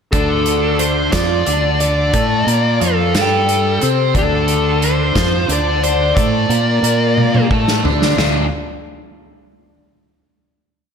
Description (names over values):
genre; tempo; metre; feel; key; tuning
indie rock; 60 BPM (dotted quarters); 6/8; straight; D minor; A4 = 440 Hz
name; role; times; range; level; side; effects
dark smooth lead guitar; melody; 0.1-7.5 s; A4 to D5; -19 LUFS; left 1 dB; overdrive, slapback echo, digital delay
biting overdriven guitar; riff; 0.1-8.5 s; D3 to C5; -18 LUFS; equal; phaser, slapback echo
fuzz fingered electric bass; bass; 0.1-8.5 s; D2 to C3; -18 LUFS; equal; overdrive
loose indie drum kit; drums; 0.1-8.3 s; china cymbal, hi-hat, kick drum, snare drum, toms; -19 LUFS; right 1 dB; none
room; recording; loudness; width
moderate lush hall reverb, RT60 2.1 s; big arena sound; -13 LUFS; side -6 dB against mid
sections
0.1-8.2 verse; 8.2-10.2 final chord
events
drum fill 7.2-8.2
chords
0.1 Dm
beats
| 0.13 1.13 | 2.14 3.15 | 4.15 5.16 | 6.17 7.17 | 8.18